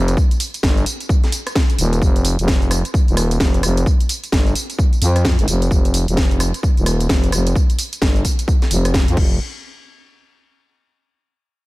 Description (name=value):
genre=bass house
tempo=130 BPM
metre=4/4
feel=swing 62% on 16ths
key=unclear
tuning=A4 = 442 Hz
part: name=growling FM bass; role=bass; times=0.0-9.4 s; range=Eb1 to F2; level=-17 LUFS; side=equal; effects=sidechain pumping
part: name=house drum kit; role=drums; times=0.1-9.3 s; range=crash cymbal, hi-hat, rim click, snare drum, tambourine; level=-22 LUFS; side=equal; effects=overdrive
part: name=electronic kick drum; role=drums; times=0.2-9.3 s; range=none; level=-16 LUFS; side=equal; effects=overdrive
room=little or no reverb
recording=none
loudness=-14 LUFS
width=side -20 dB against mid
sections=0.0-9.4 A section; 9.4-11.2 B section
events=filter sweep on FM bass 0.0-9.4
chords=none